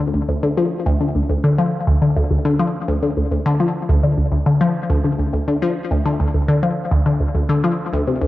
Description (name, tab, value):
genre	ambient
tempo	104 BPM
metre	4/4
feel	straight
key	D minor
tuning	A4 = 440 Hz
part	resonant blip pluck	solo	0.0-8.3 s	D2 to F3	-16 LUFS	left 1 dB	phaser, cassette tape, ping-pong delay
room	moderate spring reverb, RT60 2.5 s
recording	home recording on cassette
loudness	-16 LUFS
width	side -16 dB against mid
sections	0.0-8.3 A section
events	none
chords	none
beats	0.29 0.86 1.44 | 2.02 2.59 3.17 3.75 | 4.33 4.90 5.48 6.06 | 6.63 7.21 7.79